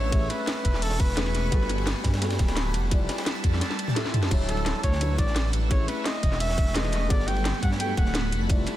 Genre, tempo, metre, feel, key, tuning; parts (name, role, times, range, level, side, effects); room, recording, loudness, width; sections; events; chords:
liquid drum and bass; 172 BPM; 4/4; straight; A4 = 438 Hz
warm flugelhorn; melody; 0.0-2.4, 4.5-8.5 s; A4 to G5; -32 LUFS; equal; ping-pong delay
felt-muted upright piano; accompaniment; 0.0-8.8 s; F#3 to E5; -33 LUFS; left 2 dB; ping-pong delay
shimmering ambient pad; sustained chords; 0.0-8.8 s; G3 to E6; -34 LUFS; right 1 dB; chorus, built-in reverb, phaser, sidechain pumping
swelling detuned saw bass; bass; 0.0-8.7 s; D1 to G2; -27 LUFS; equal
crunchy breakbeat drum kit; drums; 0.1-8.8 s; hi-hat, ride cymbal, snare drum; -37 LUFS; equal; high-pass filter on cymbals, high-pass filter on hats, high-pass filter on snare, high-pass filter on room
drum and bass drum kit; drums; 0.1-8.7 s; crash cymbal, hi-hat, snare drum, toms; -30 LUFS; equal
electronic kick drum; drums; 0.1-8.6 s; -24 LUFS; equal
little or no reverb; dense, heavily limited modern master; -23 LUFS; side -14 dB against mid
0.0-8.8 A section
drum fill 3.6-4.3
0.1 Amaj9; 1.5 Gmaj9; 2.9 Fmaj9; 4.3 Dmaj9; 5.7 Amaj9; 7.1 Gmaj9